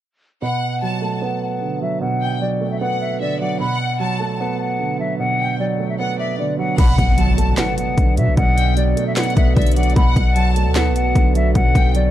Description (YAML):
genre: hip hop, trap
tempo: 151 BPM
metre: 4/4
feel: half-time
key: B minor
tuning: A4 = 440 Hz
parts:
  - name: hollow concert flute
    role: melody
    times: 0.4-12.1 s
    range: D5 to B5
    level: -23 LUFS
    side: left 2 dB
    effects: low-pass filter, ping-pong delay
  - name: rich studio violin section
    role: second line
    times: 0.4-11.9 s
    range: D5 to A5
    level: -28 LUFS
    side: left 2 dB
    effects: ping-pong delay
  - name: dark concert grand piano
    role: accompaniment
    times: 0.4-12.1 s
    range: B2 to B3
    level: -22 LUFS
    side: right 5 dB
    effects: low-pass filter
  - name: warbly tape-like pad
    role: sustained chords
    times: 6.8-12.1 s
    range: B3 to D5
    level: -28 LUFS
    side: equal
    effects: chorus, built-in reverb
  - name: warm 808-style bass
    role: bass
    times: 6.8-12.1 s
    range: B1 to B2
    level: -16 LUFS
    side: left 1 dB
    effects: none
  - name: trap drum kit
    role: drums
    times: 6.8-12.0 s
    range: crash cymbal, handclaps, hi-hat, kick drum, snare drum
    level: -19 LUFS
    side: left 1 dB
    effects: overdrive
  - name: impact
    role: sound effects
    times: 6.8-8.4 s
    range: none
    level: -24 LUFS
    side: left 1 dB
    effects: none
room: digital ambience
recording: dark, warm production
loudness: -16 LUFS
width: side -12 dB against mid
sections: 0.4-6.8 A section; 6.8-12.1 B section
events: filter sweep 0.4-6.8; impact 6.8-8.4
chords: 0.4 Bm7